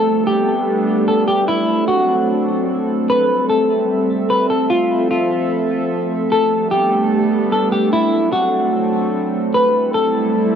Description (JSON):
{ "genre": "hip hop", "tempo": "149 BPM", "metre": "4/4", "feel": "half-time", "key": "A minor", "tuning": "A4 = 440 Hz", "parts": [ { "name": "semi-hollow electric guitar", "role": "melody", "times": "0.0-10.6 s", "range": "E4 to B4", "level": "-17 LUFS", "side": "left 1 dB", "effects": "lush chorus, analog delay" }, { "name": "warbly tape-like pad", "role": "sustained chords", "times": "0.0-10.6 s", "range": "F3 to E5", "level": "-18 LUFS", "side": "right 2 dB", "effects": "chorus, built-in reverb, cassette tape" } ], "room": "moderate spring reverb, RT60 1.2 s", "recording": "home recording on cassette", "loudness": "-14 LUFS", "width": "side -8 dB against mid", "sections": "0.0-9.5 A section; 9.5-10.6 B section", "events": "none", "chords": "0.0 Gadd9; 1.5 D7; 3.1 Am7; 4.7 Fmaj7; 6.3 Gadd9; 7.9 D7; 9.5 Am7", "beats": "0.28 0.68 1.08 | 1.48 1.89 2.29 2.69 | 3.09 3.50 3.90 4.30 | 4.70 5.11 5.51 5.91 | 6.32 6.72 7.12 7.52 | 7.93 8.33 8.73 9.13 | 9.54 9.94 10.34" }